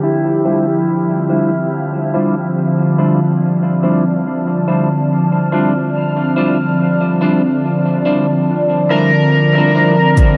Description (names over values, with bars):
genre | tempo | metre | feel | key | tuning
ambient dub | 71 BPM | 4/4 | swing 59% on 16ths | D minor | A4 = 440 Hz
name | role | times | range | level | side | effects
overdriven slide guitar | melody | 0.0-1.7, 8.9-10.1 s | E4 to Bb4 | -21 LUFS | equal | lush chorus, dub echo
warbly tape-like pad | sustained chords | 0.0-10.4 s | D3 to A5 | -17 LUFS | equal | chorus, built-in reverb, phaser
bubbling stepped-filter texture | texture | 0.0-10.2 s | F3 to F6 | -27 LUFS | equal | chorus, built-in reverb
clean electric guitar | stabs | 0.4-10.0 s | G3 to C5 | -22 LUFS | equal | dub echo
cabasa | drums | 10.2-10.4 s | none | barely audible | none | none
electronic kick drum | drums | 10.2-10.4 s | none | -13 LUFS | equal | none
room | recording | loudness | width
wet huge ambient reverb, RT60 9.2 s | dreamy mix soaked in reverb, low-pass filter | -14 LUFS | mono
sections
0.0-10.2 A section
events
filter sweep on ambient pad 0.0-10.2; filter sweep 0.0-10.2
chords
0.0 Dm11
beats
| 0.03 0.88 1.72 2.57 | 3.41 4.26 5.10 5.95 | 6.79 7.64 8.48 9.33 | 10.17